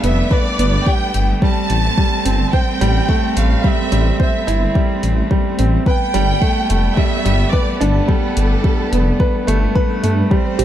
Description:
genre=piano and strings electronica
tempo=108 BPM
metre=4/4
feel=straight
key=unclear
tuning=A4 = 439 Hz
part: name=warm symphonic violin section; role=melody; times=0.0-10.6 s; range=A4 to A5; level=-22 LUFS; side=right 1 dB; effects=none
part: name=warm string quartet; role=sustained chords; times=0.0-10.6 s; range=G3 to C4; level=-24 LUFS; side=left 1 dB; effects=none
part: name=clear baby grand piano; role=riff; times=0.0-10.6 s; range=G3 to C5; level=-20 LUFS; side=right 2 dB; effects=none
part: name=dark detuned saw bass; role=bass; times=0.0-10.6 s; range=F1 to G2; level=-16 LUFS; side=equal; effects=sidechain pumping
part: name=electronic hi-hat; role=drums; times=0.0-10.6 s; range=none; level=-29 LUFS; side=left 2 dB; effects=none
part: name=electronic kick drum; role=drums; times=0.3-10.4 s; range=none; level=-16 LUFS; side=equal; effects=none
part: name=wide unison pluck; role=arpeggios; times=10.3-10.6 s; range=G4 to C5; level=-21 LUFS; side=right 6 dB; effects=sidechain pumping
room=small room reverb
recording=dark, warm production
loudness=-14 LUFS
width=side -11 dB against mid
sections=0.0-10.6 A section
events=none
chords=0.0 Gadd9; 1.4 Am7; 5.9 Gadd9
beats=0.31 0.87 | 1.42 1.98 2.53 3.09 | 3.65 4.20 4.76 5.31 | 5.87 6.42 6.98 7.53 | 8.09 8.64 9.20 9.76 | 10.31

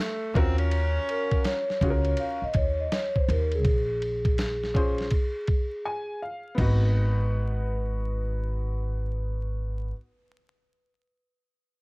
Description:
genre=hip hop, jazz-hop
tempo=82 BPM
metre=4/4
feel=swing 65% on 16ths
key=G# dorian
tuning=A4 = 441 Hz
part: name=breathy tenor saxophone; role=second line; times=0.0-1.6 s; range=A3 to C#4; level=-30 LUFS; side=right 1 dB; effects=cassette tape
part: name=warm upright piano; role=accompaniment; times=0.3-10.0 s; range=B3 to G#5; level=-34 LUFS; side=left 1 dB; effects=cassette tape
part: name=upright bass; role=bass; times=0.4-9.9 s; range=G#1 to D#2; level=-26 LUFS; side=equal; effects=none
part: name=dusty soul sampler-style drum kit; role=drums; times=0.4-6.8 s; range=crash cymbal, hi-hat, kick drum, ride cymbal, snare drum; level=-27 LUFS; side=equal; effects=cassette tape
part: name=vibraphone with soft mallets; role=melody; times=1.1-9.9 s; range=G#4 to E#5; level=-31 LUFS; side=equal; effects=cassette tape
room=little or no reverb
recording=home recording on cassette, vinyl crackle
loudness=-24 LUFS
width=side -30 dB against mid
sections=0.0-6.6 A section; 6.6-9.5 B section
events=upright piano fill 5.5-6.6; break 5.8-6.6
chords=0.4 D#m9; 3.6 A#7(no3); 6.6 G#m7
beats=| 0.72 1.45 2.19 2.92 | 3.65 4.38 5.11 5.84 | 6.58 7.31 8.04 8.77

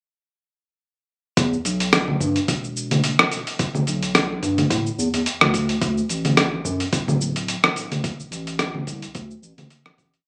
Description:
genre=sunset chillout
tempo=108 BPM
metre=4/4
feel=swing 55% on 16ths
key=E minor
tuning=A4 = 441 Hz
part: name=round analog bass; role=bass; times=1.4-10.2 s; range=D1 to A2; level=-27 LUFS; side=equal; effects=none
part: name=dusty soul sampler-style drum kit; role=drums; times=1.4-10.2 s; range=congas, hi-hat, rim click, shaker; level=-23 LUFS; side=equal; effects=overdrive
part: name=electronic kick drum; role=drums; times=1.4-10.1 s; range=none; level=-28 LUFS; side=equal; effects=none
room=light reverb, digital ambience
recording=recorded on a phone in the room, club reverb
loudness=-22 LUFS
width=mono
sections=1.4-10.3 groove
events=fade-out 7.3-10.3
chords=none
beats=| 1.37 1.93 2.48 3.04 | 3.60 4.15 4.71 5.26 | 5.82 6.37 6.93 7.48 | 8.04 8.60 9.15 9.71

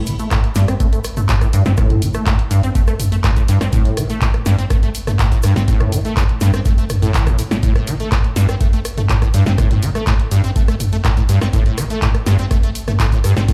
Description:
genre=acid house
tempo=123 BPM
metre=4/4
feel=straight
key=A minor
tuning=A4 = 440 Hz
part: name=acid bass, saw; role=riff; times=0.0-13.5 s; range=G2 to C4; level=-20 LUFS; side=equal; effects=ensemble chorus, sidechain pumping, dub echo
part: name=punchy analog drum machine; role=drums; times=0.1-13.5 s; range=handclaps, hi-hat, rim click, snare drum, toms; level=-23 LUFS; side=equal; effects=none
part: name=egg shaker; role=percussion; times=0.1-13.5 s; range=none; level=-38 LUFS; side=equal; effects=none
part: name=electronic kick drum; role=drums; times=0.3-13.5 s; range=none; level=-19 LUFS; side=equal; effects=none
room=light reverb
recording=played on a big sound system in a bare room, large studio reverb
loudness=-16 LUFS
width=mono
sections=0.0-13.5 A section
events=none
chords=none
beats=0.31 0.80 1.29 | 1.78 2.27 2.75 3.24 | 3.73 4.22 4.70 5.19 | 5.68 6.17 6.66 7.14 | 7.63 8.12 8.61 9.09 | 9.58 10.07 10.56 11.04 | 11.53 12.02 12.51 13.00 | 13.48

